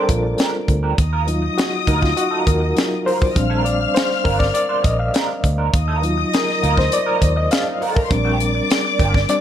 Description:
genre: lush 1970s-style soul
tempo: 101 BPM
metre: 4/4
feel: straight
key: Bb major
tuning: A4 = 439 Hz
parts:
  - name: dark studio string section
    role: second line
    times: 0.0-9.4 s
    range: D4 to F6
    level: -24 LUFS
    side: left 3 dB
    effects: none
  - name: overdriven reed electric piano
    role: accompaniment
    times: 0.0-9.4 s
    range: Gb3 to F5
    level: -21 LUFS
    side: left 1 dB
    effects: fast tremolo
  - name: electric guitar through a small old amp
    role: riff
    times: 0.0-9.3 s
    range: F3 to C5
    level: -26 LUFS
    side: right 7 dB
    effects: wah
  - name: vintage muted fingered electric bass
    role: bass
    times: 0.1-9.2 s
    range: G1 to Eb2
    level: -20 LUFS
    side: equal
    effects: none
  - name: tight funk drum kit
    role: drums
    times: 0.1-9.4 s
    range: hi-hat, kick drum, snare drum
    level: -20 LUFS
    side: equal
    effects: none
room: studio ambience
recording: none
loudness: -16 LUFS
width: side -10 dB against mid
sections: 0.0-9.4 A section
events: reed electric piano solo 0.0-9.4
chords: 0.0 Bb6; 1.0 Ebmadd9; 3.4 Bb6; 5.7 Ebmadd9; 8.1 Bb6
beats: 0.39 | 0.98 1.57 2.17 2.77 | 3.36 3.95 4.55 5.14 | 5.73 6.33 6.92 7.51 | 8.11 8.70 9.29

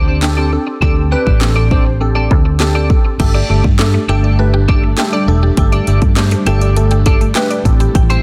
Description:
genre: dance-pop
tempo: 101 BPM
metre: 4/4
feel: straight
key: unclear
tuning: A4 = 441 Hz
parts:
  - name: glassy digital keys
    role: accompaniment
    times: 0.0-8.1 s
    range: A3 to C5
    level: -21 LUFS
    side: equal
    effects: chorus, sidechain pumping
  - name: clean electric guitar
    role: riff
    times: 0.0-8.2 s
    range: C4 to D5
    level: -24 LUFS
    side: equal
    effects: analog chorus
  - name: vintage muted fingered electric bass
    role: bass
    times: 0.0-8.2 s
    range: E1 to G2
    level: -16 LUFS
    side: equal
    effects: sidechain pumping
  - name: house drum kit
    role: drums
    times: 0.2-8.2 s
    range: crash cymbal, handclaps, hi-hat, kick drum, snare drum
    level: -16 LUFS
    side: equal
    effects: none
  - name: ethereal airy pad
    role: sustained chords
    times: 4.4-8.2 s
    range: C3 to E4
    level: -26 LUFS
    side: equal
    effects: none
  - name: mallet-like synth pluck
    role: arpeggios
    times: 3.2-8.2 s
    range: A3 to G5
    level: -26 LUFS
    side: equal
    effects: chorus, sidechain pumping, dub echo
room: little or no reverb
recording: dense, heavily limited modern master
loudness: -13 LUFS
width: mono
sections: 0.0-3.2 A section; 3.2-8.2 B section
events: none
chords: 0.0 D7sus4; 3.2 Gsus2; 7.7 Am7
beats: 0.23 | 0.82 1.42 2.01 2.60 | 3.20 3.79 4.39 4.98 | 5.58 6.17 6.76 7.36 | 7.95

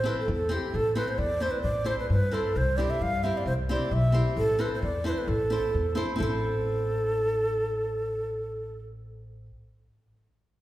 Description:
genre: balkan folk, Balkan wedding band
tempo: 132 BPM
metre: 2/4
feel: straight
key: A minor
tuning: A4 = 440 Hz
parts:
  - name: breathy reedy ney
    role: melody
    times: 0.0-8.8 s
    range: G4 to F5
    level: -28 LUFS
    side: right 1 dB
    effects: none
  - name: flamenco guitar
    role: accompaniment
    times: 0.0-9.5 s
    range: C4 to C5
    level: -33 LUFS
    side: equal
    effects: none
  - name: upright bass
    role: bass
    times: 0.0-9.5 s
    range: A1 to G2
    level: -29 LUFS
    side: equal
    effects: none
room: wet recital hall reverb, RT60 1.7 s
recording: heard from further back in the room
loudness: -25 LUFS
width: side -15 dB against mid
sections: 0.0-6.2 A section; 6.2-8.0 B section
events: none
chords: 0.0 Am; 2.6 C; 4.4 Am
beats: 0.28 | 0.73 1.19 | 1.65 2.10 | 2.56 3.01 | 3.47 3.92 | 4.38 4.83 | 5.29 5.74 | 6.20 6.65 | 7.10 7.56

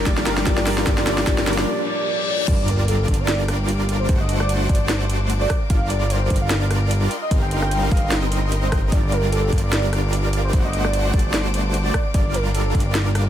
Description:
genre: future bass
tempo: 149 BPM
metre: 4/4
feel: swing 55% on 16ths, half-time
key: G minor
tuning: A4 = 440 Hz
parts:
  - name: warm velvety synth lead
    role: melody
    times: 0.0-13.1 s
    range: A4 to G5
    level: -27 LUFS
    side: right 1 dB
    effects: chorus, sidechain pumping, dub echo
  - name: dark baby grand piano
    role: accompaniment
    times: 0.0-2.5 s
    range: F3 to G4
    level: -29 LUFS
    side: left 6 dB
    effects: sidechain pumping, ping-pong delay
  - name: bright studio string section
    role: sustained chords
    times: 0.0-13.3 s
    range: Bb3 to D6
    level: -32 LUFS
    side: left 3 dB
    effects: sidechain pumping
  - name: supersaw chords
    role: riff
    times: 0.0-13.3 s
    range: G3 to F#5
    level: -26 LUFS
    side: right 1 dB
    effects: sidechain pumping
  - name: fat analog bass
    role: bass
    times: 0.0-13.3 s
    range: G1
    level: -22 LUFS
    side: equal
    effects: tube saturation, sidechain pumping
  - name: riser, reverse cymbal and sub drop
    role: sound effects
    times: 0.0-4.1 s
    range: none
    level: -28 LUFS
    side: left 1 dB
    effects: none
  - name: electronic kick drum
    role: drums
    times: 0.1-12.8 s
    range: none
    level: -21 LUFS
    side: equal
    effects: studio reverb
  - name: trap drum kit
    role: drums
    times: 0.1-13.2 s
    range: crash cymbal, hi-hat, rim click, snare drum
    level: -26 LUFS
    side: equal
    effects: studio reverb
room: little or no reverb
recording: none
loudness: -18 LUFS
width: side -11 dB against mid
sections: 0.0-2.5 A section; 2.5-13.3 B section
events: build-up 0.0-2.5; drum fill 0.0-1.7; break 1.7-2.5; reverse cymbal 1.7-2.5; drop 2.5-13.3; impact 2.5-4.1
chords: 0.0 Gm7; 0.7 Cm7/G; 2.5 Gm7; 4.1 D7/G; 5.5 Gm7; 7.1 Cm7/G; 8.9 Gm7; 10.5 D7/G; 11.9 Gm7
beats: 0.06 0.47 | 0.87 1.27 1.67 2.08 | 2.48 2.88 3.29 3.69 | 4.09 4.49 4.90 5.30 | 5.70 6.10 6.51 6.91 | 7.31 7.71 8.12 8.52 | 8.92 9.32 9.73 10.13 | 10.53 10.94 11.34 11.74 | 12.14 12.55 12.95

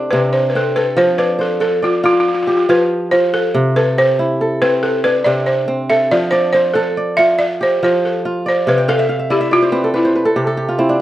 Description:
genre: west african traditional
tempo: 94 BPM (dotted quarters)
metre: 12/8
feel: straight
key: F lydian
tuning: A4 = 444 Hz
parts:
  - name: balafon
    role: melody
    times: 0.0-11.0 s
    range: E4 to E5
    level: -15 LUFS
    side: equal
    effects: slapback echo
  - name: kora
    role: arpeggios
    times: 0.0-11.0 s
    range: C3 to G5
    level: -17 LUFS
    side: right 1 dB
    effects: none
room: light reverb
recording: recorded outdoors, with no room sound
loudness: -13 LUFS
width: side -14 dB against mid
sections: 0.0-11.0 A section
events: kora fill 8.8-11.0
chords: 0.0 C; 1.0 F; 3.5 C; 6.1 F; 8.7 C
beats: 0.34 | 0.98 1.62 2.26 2.90 | 3.54 4.19 4.83 5.47 | 6.11 6.75 7.39 8.04 | 8.68 9.32 9.96 10.60

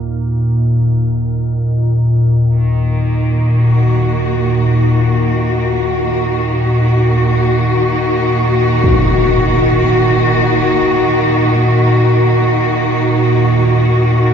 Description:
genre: dark ambient drone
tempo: free time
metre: none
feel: none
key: Eb minor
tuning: A4 = 440 Hz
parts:
  - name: organ-like drone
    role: drone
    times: 0.0-14.3 s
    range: Eb2 to Bb2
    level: -13 LUFS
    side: equal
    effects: ensemble chorus, built-in reverb
  - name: rich symphonic cello section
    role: sustained chords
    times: 2.5-14.3 s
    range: Eb3 to Gb4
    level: -14 LUFS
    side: left 1 dB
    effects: none
  - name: impact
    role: percussion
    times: 8.8-9.0 s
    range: none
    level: -20 LUFS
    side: right 1 dB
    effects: low-pass filter on sfx
room: wet cathedral reverb, RT60 6.5 s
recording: in a vast, echoing space, cassette tape, nothing above 8.0 kHz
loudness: -11 LUFS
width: side -7 dB against mid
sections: 0.0-2.5 A section; 2.5-14.3 B section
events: none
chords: 0.0 Eb5; 2.5 Ebm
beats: free time

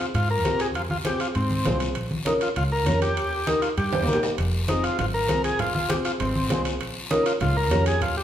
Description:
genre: latin, cumbia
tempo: 198 BPM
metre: 4/4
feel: straight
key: F minor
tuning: A4 = 440 Hz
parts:
  - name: overdriven combo organ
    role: melody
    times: 0.0-8.2 s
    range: C4 to Bb4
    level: -26 LUFS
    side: equal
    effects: none
  - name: dark upright piano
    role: accompaniment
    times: 0.0-7.9 s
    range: C4 to Bb4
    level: -28 LUFS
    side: left 1 dB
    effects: none
  - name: fingered electric bass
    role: bass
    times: 0.0-8.2 s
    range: F1 to Ab2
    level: -27 LUFS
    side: equal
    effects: none
  - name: timbales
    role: percussion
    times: 0.0-8.2 s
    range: none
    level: -34 LUFS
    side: right 5 dB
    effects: none
  - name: congas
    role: percussion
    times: 0.1-8.2 s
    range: none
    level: -31 LUFS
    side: equal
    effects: none
  - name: guiro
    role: percussion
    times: 0.1-8.2 s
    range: none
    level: -36 LUFS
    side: left 4 dB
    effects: none
room: wet large studio reverb, RT60 1.3 s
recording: band playing live in one room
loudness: -21 LUFS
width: side -10 dB against mid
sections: 0.0-4.4 A section; 4.4-8.2 A section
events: drum fill 3.9-4.4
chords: 0.0 Fm; 2.0 Bbm; 3.2 Eb; 4.4 Fm; 6.8 Bbm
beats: 0.14 0.45 | 0.75 1.05 1.36 1.66 | 1.96 2.26 2.57 2.87 | 3.17 3.48 3.78 4.08 | 4.38 4.69 4.99 5.29 | 5.59 5.90 6.20 6.50 | 6.80 7.11 7.41 7.71 | 8.02

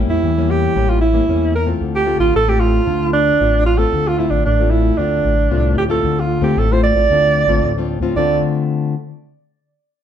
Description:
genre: samba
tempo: 113 BPM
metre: 4/4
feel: straight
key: D minor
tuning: A4 = 439 Hz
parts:
  - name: nylon-string guitar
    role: accompaniment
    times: 0.0-8.9 s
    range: A2 to F4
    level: -19 LUFS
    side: left 5 dB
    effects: none
  - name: sub bass with octave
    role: bass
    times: 0.0-8.4 s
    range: A1 to E2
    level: -19 LUFS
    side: equal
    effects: none
  - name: warm alto saxophone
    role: melody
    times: 0.1-8.4 s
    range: D4 to D5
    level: -16 LUFS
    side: right 4 dB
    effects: plate reverb
room: moderate studio reverb, RT60 0.7 s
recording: heard from further back in the room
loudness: -13 LUFS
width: side -9 dB against mid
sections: 0.0-6.0 A section; 6.0-8.2 B section; 8.2-10.0 C section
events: none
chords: 0.0 A7b9; 1.8 Dm7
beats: 0.23 0.76 1.29 | 1.82 2.34 2.87 3.40 | 3.93 4.46 4.99 5.52 | 6.05 6.58 7.11 7.64 | 8.16 8.70

